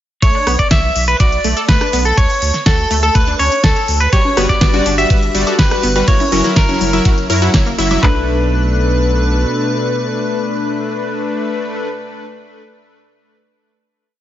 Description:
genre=progressive house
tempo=123 BPM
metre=4/4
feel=straight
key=B minor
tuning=A4 = 440 Hz
part: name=clean electric guitar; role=melody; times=0.2-11.9 s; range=A4 to E5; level=-18 LUFS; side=equal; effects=spring reverb, sidechain pumping, digital delay
part: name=airy dreamy lead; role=second line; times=0.2-11.9 s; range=A4 to E5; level=-22 LUFS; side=equal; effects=chorus, cassette tape, sidechain pumping, digital delay
part: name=wide unison pluck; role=arpeggios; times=0.2-8.3 s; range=A3 to B4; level=-23 LUFS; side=right 1 dB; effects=sidechain pumping, digital delay
part: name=saturated sub bass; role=bass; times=0.2-9.5 s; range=F#1 to F#2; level=-18 LUFS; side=equal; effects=tube saturation, sidechain pumping
part: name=pop drum kit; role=drums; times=0.2-8.1 s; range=handclaps, kick drum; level=-14 LUFS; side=equal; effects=none
part: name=pop drum kit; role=drums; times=0.2-8.0 s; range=hi-hat, ride cymbal, rim click, snare drum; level=-20 LUFS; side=equal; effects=sidechain pumping on hats, sidechain pumping on cymbals
part: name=warm analog pad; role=sustained chords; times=4.1-11.9 s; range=B2 to B4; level=-23 LUFS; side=right 1 dB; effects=lush chorus, sidechain pumping
part: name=supersaw stab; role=stabs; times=4.1-11.9 s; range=F#3 to E5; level=-18 LUFS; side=left 2 dB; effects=sidechain pumping, digital delay
part: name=congas and woodblock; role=percussion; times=4.2-8.0 s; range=none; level=-24 LUFS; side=left 2 dB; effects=overdrive, sidechain pumping on perc
room=light reverb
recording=nothing above 7.5 kHz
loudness=-12 LUFS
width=side -12 dB against mid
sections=0.2-8.0 drop; 8.0-11.9 final chord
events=drop 0.2-8.0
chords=0.2 Bm; 2.2 Dmaj7(no3); 4.1 Gmaj7; 6.1 F#7; 8.0 Bm7

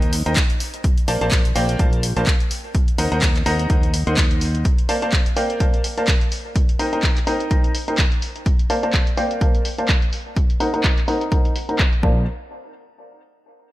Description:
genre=piano house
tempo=126 BPM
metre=4/4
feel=swing 56% on 16ths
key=unclear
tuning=A4 = 440 Hz
part: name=bright baby grand piano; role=riff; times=0.0-12.2 s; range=Bb3 to C6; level=-23 LUFS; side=equal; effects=sidechain pumping, low-pass filter, tape echo
part: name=fingered electric bass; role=bass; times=0.0-4.6, 12.0-12.3 s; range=Bb1 to Eb2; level=-22 LUFS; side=equal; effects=sidechain pumping
part: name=punchy analog drum machine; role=drums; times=0.0-12.0 s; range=handclaps, hi-hat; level=-25 LUFS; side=equal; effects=low-pass filter on hats, low-pass filter on perc, low-pass filter on snare, low-pass filter on cymbals
part: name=electronic kick drum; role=drums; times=0.4-12.1 s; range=none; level=-18 LUFS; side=equal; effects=none
room=digital ambience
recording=none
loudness=-17 LUFS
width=side -16 dB against mid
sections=0.0-12.3 A section; 12.3-13.7 B section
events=filter sweep on grand piano 0.0-12.3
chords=0.0 Eb6; 0.8 Bbmaj9; 2.5 Ebm6; 4.7 Bbmaj9; 6.6 Eb6; 8.5 Bbmaj9; 10.1 Ebm6; 12.0 Bbmaj9; 12.3 N.C.

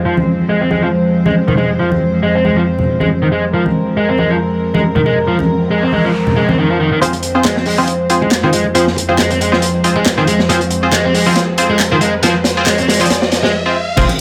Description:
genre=breakbeat, breaks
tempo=138 BPM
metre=4/4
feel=swing 55% on 16ths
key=F minor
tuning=A4 = 439 Hz
part: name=warm symphonic string section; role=sustained chords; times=0.0-14.2 s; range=F2 to C5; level=-19 LUFS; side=equal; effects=vintage 12-bit sampler grit, sidechain pumping
part: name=overdriven electric guitar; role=riff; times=0.1-14.1 s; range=Eb3 to C4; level=-19 LUFS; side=equal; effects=low-pass filter, tape echo
part: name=congas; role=percussion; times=0.2-6.6, 14.1-14.2 s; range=none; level=-21 LUFS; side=equal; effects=none
part: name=noise sweep, riser and impact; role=sound effects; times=5.6-14.2 s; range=none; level=-28 LUFS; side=equal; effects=none
part: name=band-passed chord stab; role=stabs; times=7.0-14.1 s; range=C4 to C5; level=-19 LUFS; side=equal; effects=chorus, tape echo
part: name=crunchy breakbeat drum kit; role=drums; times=7.0-14.2 s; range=crash cymbal, hi-hat, kick drum, snare drum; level=-20 LUFS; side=equal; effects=high-pass filter on kick, high-pass filter on hats, high-pass filter on cymbals, high-pass filter on snare, high-pass filter on room
part: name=house drum kit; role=drums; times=7.4-14.2 s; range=handclaps, hi-hat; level=-21 LUFS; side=equal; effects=high-pass filter on snare, high-pass filter on hats
part: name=saturated sub bass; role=bass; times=14.0-14.1 s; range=F1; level=-16 LUFS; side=equal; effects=none
room=moderate small room reverb, RT60 0.5 s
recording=none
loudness=-14 LUFS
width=mono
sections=0.0-7.0 A section; 7.0-14.0 B section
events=noise sweep 5.6-7.0; build-up 7.0-14.0; drum fill 10.5-13.5; break 13.5-14.0; impact 14.0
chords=0.0 Fm

